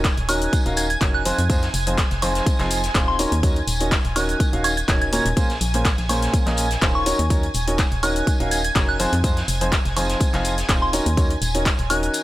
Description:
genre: piano house.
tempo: 124 BPM.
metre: 4/4.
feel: swing 54% on 16ths.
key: Eb dorian.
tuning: A4 = 440 Hz.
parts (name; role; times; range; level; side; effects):
analog string pad; sustained chords; 0.0-12.2 s; Ab5; -30 LUFS; right 2 dB; ensemble chorus, sidechain pumping.
clear baby grand piano; riff; 0.0-12.2 s; Bb2 to F5; -25 LUFS; equal; sidechain pumping, dub echo.
organ-like FM bass; bass; 0.0-12.1 s; Eb1 to F2; -24 LUFS; equal; sidechain pumping.
electronic kick drum; drums; 0.0-11.8 s; none; -20 LUFS; equal; none.
punchy analog drum machine; drums; 0.0-12.2 s; handclaps, hi-hat, shaker, woodblock; -26 LUFS; left 1 dB; none.
snare drum and tambourine; drums; 0.0-12.2 s; none; -32 LUFS; equal; high-pass filter on snare, sidechain pumping on perc, high-pass filter on perc, high-pass filter on room.
soft synth bell; melody; 0.3-12.1 s; C6 to Ab6; -27 LUFS; equal; chorus, phaser, vintage 12-bit sampler grit, dub echo.
room: little or no reverb.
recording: none.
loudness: -18 LUFS.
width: side -16 dB against mid.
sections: 0.0-12.2 A section.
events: none.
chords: 0.0 Ebm7; 1.3 Fm7; 3.2 Ebm7; 5.4 Bbm9; 7.1 Ebm7; 9.0 Fm7; 10.9 Ebm7.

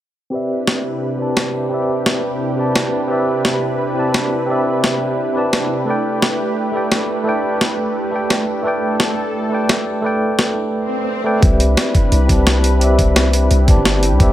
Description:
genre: liquid drum and bass.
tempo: 173 BPM.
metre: 4/4.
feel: straight.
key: unclear.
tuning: A4 = 438 Hz.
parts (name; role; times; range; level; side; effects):
bright tine electric piano; accompaniment; 0.3-14.3 s; A3 to A5; -19 LUFS; equal; medium tremolo, low-pass filter, dub echo.
lush unison pad; sustained chords; 0.3-14.3 s; C3 to B4; -22 LUFS; right 1 dB; chorus, sidechain pumping.
breakbeat sampler-style drum kit; drums; 0.7-14.3 s; hi-hat, snare drum; -18 LUFS; equal; none.
swell; sound effects; 10.8-11.4 s; none; -25 LUFS; equal; none.
long sustained 808-style bass; bass; 11.4-14.3 s; G1 to C2; -14 LUFS; equal; none.
electronic kick drum; drums; 11.4-14.3 s; none; -14 LUFS; equal; none.
room: light reverb, digital ambience.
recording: none.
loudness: -14 LUFS.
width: side -13 dB against mid.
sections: 0.3-11.4 A section; 11.4-14.3 B section.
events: filter sweep on tine electric piano 0.3-11.4, 11.4-14.3; swell 10.8-11.4.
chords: 0.3 Cmaj9; 5.9 A9sus4; 11.4 Cmaj9.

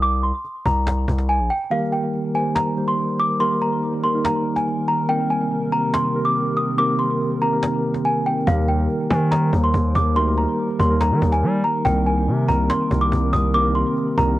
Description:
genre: hip hop, trap.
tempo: 142 BPM.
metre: 4/4.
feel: half-time.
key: C minor.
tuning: A4 = 440 Hz.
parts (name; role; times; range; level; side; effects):
small celesta; melody; 0.0-14.4 s; F5 to Eb6; -22 LUFS; equal; low-pass filter, cassette tape, plate reverb, tape echo.
distorted 808-style bass; bass; 0.0-1.5, 8.5-14.4 s; Bb1 to G3; -20 LUFS; equal; distortion.
cajon; drums; 0.0-14.3 s; none; -28 LUFS; equal; none.
mellow tine electric piano; accompaniment; 1.7-14.4 s; Eb3 to C5; -22 LUFS; right 1 dB; medium stereo tremolo, low-pass filter.
warbly tape-like pad; sustained chords; 2.1-14.4 s; C3 to Bb4; -30 LUFS; equal; chorus, built-in reverb.
room: light reverb.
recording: home recording on cassette.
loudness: -18 LUFS.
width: side -16 dB against mid.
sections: 0.0-14.4 A section.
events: filter sweep 0.0-1.7; kick muted 1.7-8.5.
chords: 0.0 Bbsus2; 1.7 Eb; 5.1 Cm7; 8.5 Eb; 11.9 Cm7.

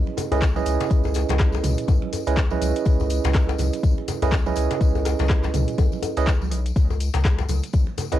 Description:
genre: afro house.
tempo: 123 BPM.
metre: 4/4.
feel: swing 58% on 16ths.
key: C# minor.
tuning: A4 = 439 Hz.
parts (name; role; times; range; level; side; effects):
barky tine electric piano; stabs; 0.0-8.2 s; C#4 to D#5; -26 LUFS; right 8 dB; sidechain pumping, cassette tape, tape echo.
round analog bass; bass; 0.0-8.2 s; B1 to C#2; -24 LUFS; left 1 dB; sidechain pumping.
congas; percussion; 0.1-8.1 s; none; -34 LUFS; right 9 dB; none.
deep house drum kit; drums; 0.2-8.2 s; handclaps, hi-hat, rim click, toms; -30 LUFS; left 2 dB; overdrive, cassette tape.
djembe; percussion; 0.2-8.2 s; none; -29 LUFS; left 10 dB; none.
tambourine; percussion; 0.2-8.2 s; none; -40 LUFS; left 12 dB; none.
electronic kick drum; drums; 0.4-7.8 s; none; -20 LUFS; left 1 dB; overdrive, cassette tape.
room: little or no reverb.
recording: home recording on cassette.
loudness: -19 LUFS.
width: side -13 dB against mid.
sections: 0.0-8.2 A section.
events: none.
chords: 0.0 C#m9.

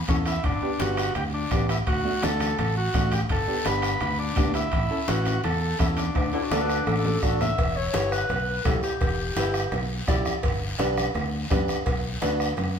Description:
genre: latin, cumbia.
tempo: 168 BPM.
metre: 4/4.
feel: straight.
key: unclear.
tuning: A4 = 440 Hz.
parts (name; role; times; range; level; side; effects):
combo organ; melody; 0.1-7.2 s; C#4 to B4; -29 LUFS; equal; none.
clear upright piano; accompaniment; 0.1-12.5 s; A3 to D5; -30 LUFS; equal; none.
fingered electric bass; bass; 0.1-12.8 s; E1 to F#2; -29 LUFS; equal; none.
bombo; percussion; 0.1-12.8 s; none; -28 LUFS; equal; none.
congas; percussion; 0.1-12.8 s; none; -34 LUFS; left 2 dB; none.
guiro; percussion; 0.1-12.8 s; none; -37 LUFS; left 3 dB; none.
timbales and cowbell; percussion; 0.1-12.8 s; none; -36 LUFS; right 2 dB; none.
mellow clarinet; second line; 6.3-9.9 s; E4 to E5; -29 LUFS; left 2 dB; none.
room: wet stone room reverb, RT60 1.2 s.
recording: band playing live in one room.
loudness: -22 LUFS.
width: side -7 dB against mid.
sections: 0.0-7.6 A section; 7.6-12.8 B section.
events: drum fill 6.2-7.6; clarinet solo 7.6-12.8.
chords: 0.4 Gadd9; 1.9 D; 3.3 Gadd9; 4.7 A; 6.2 D; 7.6 Em; 10.4 G; 11.9 Bm.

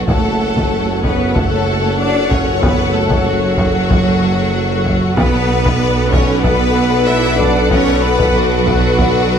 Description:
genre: cinematic, epic orchestral film score.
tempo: 94 BPM.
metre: 4/4.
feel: straight.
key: F# minor.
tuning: A4 = 440 Hz.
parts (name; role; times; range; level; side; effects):
rich studio violin section; melody; 0.0-9.4 s; F#4 to E5; -21 LUFS; left 4 dB; none.
warm symphonic violin section; second line; 0.0-9.4 s; C#5 to F#5; -23 LUFS; left 3 dB; none.
warm symphonic viola section; accompaniment; 0.0-9.4 s; F#4 to B4; -22 LUFS; left 1 dB; none.
mellow French horn section; sustained chords; 0.0-9.4 s; A4 to C#5; -23 LUFS; left 5 dB; none.
warm woodwind section; sustained chords; 0.0-9.4 s; A3 to F#5; -25 LUFS; left 3 dB; none.
clear symphonic cello section; bass; 0.0-9.4 s; F#3 to E4; -19 LUFS; right 2 dB; none.
rich symphonic double bass section; bass; 0.0-9.4 s; F#1 to B1; -20 LUFS; right 2 dB; none.
warm tuba; bass; 0.0-9.4 s; F#1 to B1; -21 LUFS; right 4 dB; none.
taiko ensemble; drums; 0.1-9.4 s; none; -19 LUFS; left 1 dB; none.
room: moderate concert hall reverb, RT60 2.2 s.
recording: none.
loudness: -12 LUFS.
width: side -7 dB against mid.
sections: 0.0-9.4 A section.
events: none.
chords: 0.1 F#m; 5.2 Bm7.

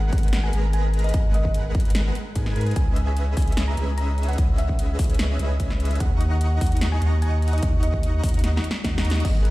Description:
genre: future bass.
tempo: 148 BPM.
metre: 4/4.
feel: half-time.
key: unclear.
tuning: A4 = 443 Hz.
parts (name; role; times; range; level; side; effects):
thumb-piano-like synth pluck; melody; 0.0-9.5 s; D#5 to A#5; -34 LUFS; right 1 dB; chorus, sidechain pumping, dub echo.
dense compressed supersaw; riff; 0.0-9.5 s; G#3 to C#6; -31 LUFS; equal; cassette tape, sidechain pumping, dub echo.
saturated sub bass; bass; 0.0-9.5 s; G#1 to G#2; -22 LUFS; equal; tube saturation, sidechain pumping.
big-room dance drum kit; drums; 0.1-9.5 s; crash cymbal, hi-hat, snare drum; -31 LUFS; equal; none.
electronic kick drum; drums; 0.1-9.3 s; none; -22 LUFS; equal; none.
room: little or no reverb.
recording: played on a big sound system in a bare room, stone room reverb.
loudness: -20 LUFS.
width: side -18 dB against mid.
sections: 0.0-9.2 A section.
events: drop 0.0-9.2; drum fill 8.4-9.2; band accent 9.1.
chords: 0.0 G#m7; 2.8 C#m9; 6.0 D#m7.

